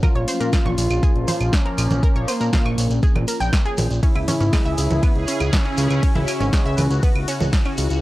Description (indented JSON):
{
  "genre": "melodic techno",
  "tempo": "120 BPM",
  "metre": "4/4",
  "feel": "straight",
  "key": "unclear",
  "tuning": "A4 = 439 Hz",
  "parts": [
    { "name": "expressive portamento lead", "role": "melody", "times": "0.0-6.9 s", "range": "A#3 to E#4", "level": "-27 LUFS", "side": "equal", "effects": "chorus, cassette tape, sidechain pumping, tape echo" },
    { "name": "sweeping resonant pad", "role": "sustained chords", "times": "0.0-8.0 s", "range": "C#3 to G#4", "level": "-28 LUFS", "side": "left 1 dB", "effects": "chorus, phaser, sidechain pumping" },
    { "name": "analog pluck", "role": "arpeggios", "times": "0.0-7.7 s", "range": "G#3 to G6", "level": "-29 LUFS", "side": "equal", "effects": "chorus, cassette tape, sidechain pumping, analog delay" },
    { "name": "deep house drum kit", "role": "drums", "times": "0.0-8.0 s", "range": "claves, congas, hi-hat, ride cymbal, snare drum", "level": "-26 LUFS", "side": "right 1 dB", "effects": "none" },
    { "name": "electronic kick drum", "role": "drums", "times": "0.0-7.6 s", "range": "none", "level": "-18 LUFS", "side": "equal", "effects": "none" },
    { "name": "shekere", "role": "percussion", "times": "0.0-8.0 s", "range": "none", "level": "-34 LUFS", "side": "right 2 dB", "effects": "none" },
    { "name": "fat analog bass", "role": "bass", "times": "0.2-8.0 s", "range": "G#1 to A#2", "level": "-21 LUFS", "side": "equal", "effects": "sidechain pumping" }
  ],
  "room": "little or no reverb",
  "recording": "dry, gritty hardware recording",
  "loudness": "-17 LUFS",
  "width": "side -17 dB against mid",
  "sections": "0.0-8.0 A section",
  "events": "none",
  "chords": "0.0 A#m; 4.0 C#m",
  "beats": "| 0.03 0.53 1.03 1.53 | 2.03 2.53 3.03 3.53 | 4.03 4.53 5.03 5.53 | 6.03 6.53 7.03 7.53"
}